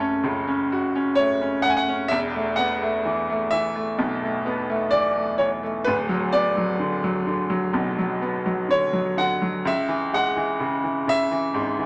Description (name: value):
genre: pop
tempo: 64 BPM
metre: 4/4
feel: straight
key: unclear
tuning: A4 = 440 Hz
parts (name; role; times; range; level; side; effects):
- clear concert grand piano; melody; 0.0-11.9 s; A4 to G#5; -26 LUFS; equal; none
- bright upright piano; accompaniment; 0.0-11.9 s; D1 to F#4; -26 LUFS; equal; none
room: wet studio reverb, RT60 0.9 s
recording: none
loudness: -23 LUFS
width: mono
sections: 0.0-11.9 A section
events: none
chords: 0.0 F#m; 2.1 Esus4; 5.9 Bm/D; 9.7 C#m